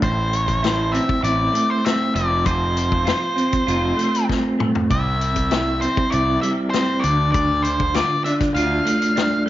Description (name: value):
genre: psychedelic rock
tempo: 98 BPM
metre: 4/4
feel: straight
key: F major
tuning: A4 = 440 Hz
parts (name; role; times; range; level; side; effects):
- octave-fuzz lead guitar; melody; 0.0-9.4 s; C5 to F5; -22 LUFS; left 1 dB; distortion, slapback echo
- electric guitar through a small old amp; riff; 0.0-9.5 s; A2 to F4; -21 LUFS; right 1 dB; rotary speaker
- fuzz fingered electric bass; bass; 0.0-8.8 s; F1 to D2; -23 LUFS; right 1 dB; overdrive
- vintage drum kit; drums; 0.0-9.3 s; hi-hat, kick drum, snare drum, toms; -25 LUFS; left 3 dB; none
room: light reverb, small room ambience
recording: 1960s-style stereo, nothing above 7.5 kHz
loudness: -17 LUFS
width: side -14 dB against mid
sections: 0.0-9.5 A section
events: drum fill 4.3-4.9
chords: 0.0 Am; 2.2 F; 4.9 C; 7.0 Dm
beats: | 0.02 0.63 1.24 1.85 | 2.46 3.07 3.68 4.29 | 4.89 5.50 6.11 6.72 | 7.33 7.94 8.55 9.16